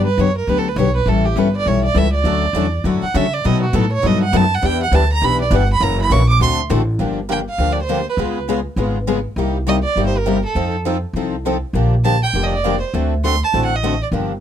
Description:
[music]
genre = acoustic string swing (jazz manouche)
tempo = 202 BPM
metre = 4/4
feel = swing 59% on 8ths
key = G minor from 7.0 s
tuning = A4 = 441 Hz
[part]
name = warm violin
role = melody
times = 0.0-14.1 s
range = F#4 to D6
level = -20 LUFS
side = right 5 dB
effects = none
[part]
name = picked steel-string acoustic guitar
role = accompaniment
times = 0.0-14.3 s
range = B2 to A4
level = -20 LUFS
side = left 7 dB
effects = none
[part]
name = upright bass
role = bass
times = 0.0-14.4 s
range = F1 to C#3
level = -18 LUFS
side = equal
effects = none
[part]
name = picked swing-style acoustic guitar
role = accompaniment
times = 2.2-14.3 s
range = B2 to B4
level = -25 LUFS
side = right 6 dB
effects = none
[sound]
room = little or no reverb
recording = close, detailed microphones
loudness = -15 LUFS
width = side -10 dB against mid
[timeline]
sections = 0.0-7.0 A section; 7.0-14.4 B section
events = violin solo 0.0-7.0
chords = 0.0 Gmaj7; 1.1 A7; 2.3 Dmaj7; 3.4 B7; 4.6 Em7; 5.8 F#7; 6.4 D7; 7.0 Gm7; 8.2 C#7; 9.4 Cm7; 10.6 F7; 11.7 Bb6; 12.9 D7

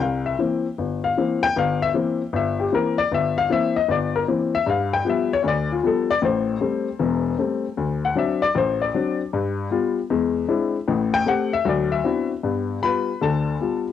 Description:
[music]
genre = solo jazz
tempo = 154 BPM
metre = 4/4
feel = swing 65% on 8ths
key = G mixolydian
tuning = A4 = 445 Hz
[part]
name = warm baby grand piano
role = solo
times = 0.0-13.9 s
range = E1 to B5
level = -20 LUFS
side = left 5 dB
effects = none
[sound]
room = light reverb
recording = home recording on cassette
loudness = -20 LUFS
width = side -10 dB against mid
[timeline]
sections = 0.0-12.4 A section; 12.4-13.9 B section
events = grand piano solo 0.0-12.4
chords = 0.0 C7; 4.7 G7; 6.2 Am7; 7.8 D7; 9.3 G7; 10.1 E7b13; 10.9 Am7; 11.7 D13; 12.4 G7

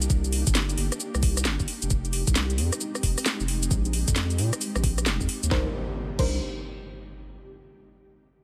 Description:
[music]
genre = UK garage, two-step garage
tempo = 133 BPM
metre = 4/4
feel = swing 64% on 16ths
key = C minor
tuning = A4 = 438 Hz
[part]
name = ethereal airy pad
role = sustained chords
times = 0.0-5.7 s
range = Ab3 to G4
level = -39 LUFS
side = equal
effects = ensemble chorus, built-in reverb, tremolo, sidechain pumping
[part]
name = saturated sub bass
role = bass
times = 0.0-6.4 s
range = F1 to Bb2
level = -29 LUFS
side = equal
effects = none
[part]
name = garage drum kit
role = drums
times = 0.0-6.3 s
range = cabasa, crash cymbal, hi-hat, rim click, snare drum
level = -30 LUFS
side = equal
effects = none
[part]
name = electronic kick drum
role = drums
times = 0.1-6.3 s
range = none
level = -28 LUFS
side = equal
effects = none
[part]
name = deep mellow chord stab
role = stabs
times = 5.5-6.4 s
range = D4 to C5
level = -36 LUFS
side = equal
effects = chorus, delay
[part]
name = impact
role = sound effects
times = 5.5-7.3 s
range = none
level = -38 LUFS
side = equal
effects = none
[sound]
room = digital ambience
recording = none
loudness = -26 LUFS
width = mono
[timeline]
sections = 0.0-5.5 A section; 5.5-7.3 B section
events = none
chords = 0.0 Cm9; 1.7 Fm9; 3.7 Bb13sus4; 5.5 Cm9

